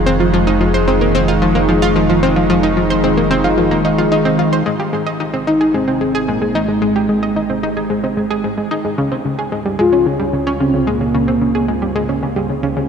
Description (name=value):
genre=ambient, sequencer-driven space music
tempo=111 BPM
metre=4/4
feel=straight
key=unclear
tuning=A4 = 444 Hz
part: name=evolving wavetable pad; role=sustained chords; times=0.0-12.9 s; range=Db3 to C5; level=-18 LUFS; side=equal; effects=chorus, built-in reverb
part: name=round analog bass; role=bass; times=0.0-12.9 s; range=F1 to Db2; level=-24 LUFS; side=equal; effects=tube saturation
part: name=analog pluck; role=riff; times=0.1-12.8 s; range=Db3 to Eb5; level=-17 LUFS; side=equal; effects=chorus, tape echo
part: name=soft octave-layered synth lead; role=melody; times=5.5-12.0 s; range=Ab3 to F4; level=-17 LUFS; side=equal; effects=chorus, phaser, tape echo
room=wet cathedral reverb, RT60 6.6 s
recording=in a vast, echoing space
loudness=-13 LUFS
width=side -7 dB against mid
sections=0.0-4.7 A section; 4.7-12.9 B section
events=fade-in on ambient pad 4.7-12.9; fade-in on analog synth bass 4.7-12.9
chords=0.0 Fm7; 4.7 Abmaj7; 9.0 Dbmaj7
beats=| 0.34 0.88 1.42 1.96 | 2.50 3.04 3.58 4.12 | 4.66 5.20 5.74 6.28 | 6.82 7.36 7.90 8.44 | 8.98 9.52 10.06 10.61 | 11.14 11.69 12.23 12.77